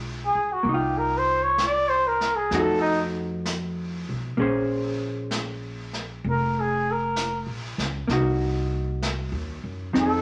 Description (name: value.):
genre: jazz ballad.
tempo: 65 BPM.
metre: 4/4.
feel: swing 68% on 8ths.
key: Bb minor.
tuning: A4 = 440 Hz.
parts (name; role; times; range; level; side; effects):
hollow-body jazz guitar; accompaniment; 0.0-10.2 s; F3 to C5; -30 LUFS; equal; none.
upright bass; bass; 0.0-10.2 s; F1 to Gb2; -32 LUFS; equal; none.
mellow trumpet; melody; 0.3-10.2 s; Eb4 to D5; -25 LUFS; equal; none.
vintage brush drum kit; drums; 0.7-10.2 s; brushed snare drum, hi-hat, snare drum; -37 LUFS; equal; none.
room: wet studio reverb, RT60 0.8 s.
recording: none.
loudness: -25 LUFS.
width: mono.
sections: 0.0-10.2 A section.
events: trumpet solo 0.0-10.2.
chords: 0.0 Bdim7; 0.7 Cm7; 2.5 F7b9; 4.4 Bbm9; 8.1 Cm7b5.